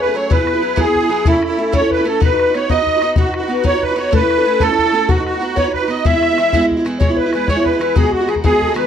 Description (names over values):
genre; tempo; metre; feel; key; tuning
celtic folk, Celtic jig; 125 BPM (dotted quarters); 6/8; straight; E major; A4 = 443 Hz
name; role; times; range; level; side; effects
musette accordion; melody; 0.0-8.9 s; E4 to E5; -17 LUFS; right 3 dB; plate reverb
mellow hollow wooden flute; second line; 0.0-8.9 s; E4 to F#5; -20 LUFS; left 6 dB; none
picked steel-string acoustic guitar; accompaniment; 0.0-8.9 s; A2 to B4; -19 LUFS; right 2 dB; none
bodhran; percussion; 0.3-8.8 s; none; -18 LUFS; left 2 dB; none
room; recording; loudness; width
wet small room reverb, RT60 0.5 s; dark, warm production; -13 LUFS; side -8 dB against mid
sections
0.0-7.0 A section; 7.0-8.9 B section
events
none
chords
0.3 Eadd9; 1.3 A; 2.2 B; 4.1 A; 5.1 B; 6.0 E; 8.0 B6/D#